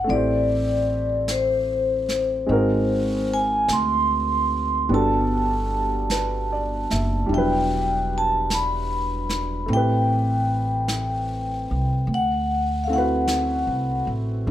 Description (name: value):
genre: jazz ballad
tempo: 50 BPM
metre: 4/4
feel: swing 69% on 8ths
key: unclear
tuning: A4 = 441 Hz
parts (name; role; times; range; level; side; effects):
- vibraphone with medium mallets; melody; 0.0-14.1 s; C5 to C6; -23 LUFS; left 1 dB; none
- warm upright piano; accompaniment; 0.0-14.5 s; F#3 to E5; -26 LUFS; right 1 dB; none
- upright bass; bass; 0.0-14.5 s; E1 to D2; -26 LUFS; right 1 dB; none
- jazz brush drum kit; drums; 0.1-14.5 s; brushed snare drum, hi-hat, snare drum; -32 LUFS; right 1 dB; none
room: light reverb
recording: none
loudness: -20 LUFS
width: side -12 dB against mid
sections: 0.0-14.5 A section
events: none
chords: 0.1 Am7; 2.5 Ab9; 4.9 Gmaj9; 7.3 Em9; 9.7 Am9; 12.1 D13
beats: | 0.08 1.28 2.48 3.69 | 4.89 6.10 7.30 8.50 | 9.70 10.89 12.08 13.27 | 14.46